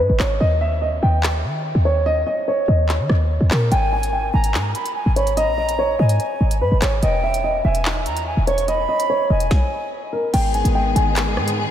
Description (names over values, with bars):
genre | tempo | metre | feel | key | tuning
hip hop, drill | 145 BPM | 4/4 | half-time | G# harmonic minor | A4 = 440 Hz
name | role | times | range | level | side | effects
dark concert grand piano | melody | 0.0-11.7 s | A#4 to G#5 | -21 LUFS | equal | analog delay
short 808-style bass | bass | 0.0-11.7 s | E1 to D#3 | -19 LUFS | equal | none
drill drum kit | drums | 0.2-11.6 s | crash cymbal, handclaps, hi-hat, kick drum, rim click, snare drum | -26 LUFS | equal | none
concert flute | second line | 3.7-9.9 s | G5 to C#6 | -27 LUFS | right 3 dB | analog delay
rich symphonic string section | sustained chords | 10.3-11.7 s | D#3 to G#4 | -23 LUFS | left 2 dB | none
room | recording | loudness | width
moderate cathedral reverb, RT60 4.9 s | dreamy mix soaked in reverb | -17 LUFS | side -10 dB against mid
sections
0.0-10.3 A section; 10.3-11.7 B section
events
break 0.0-3.7; stop 9.5-10.3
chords
0.4 D#; 3.7 G#5; 7.0 Emaj7; 10.3 G#m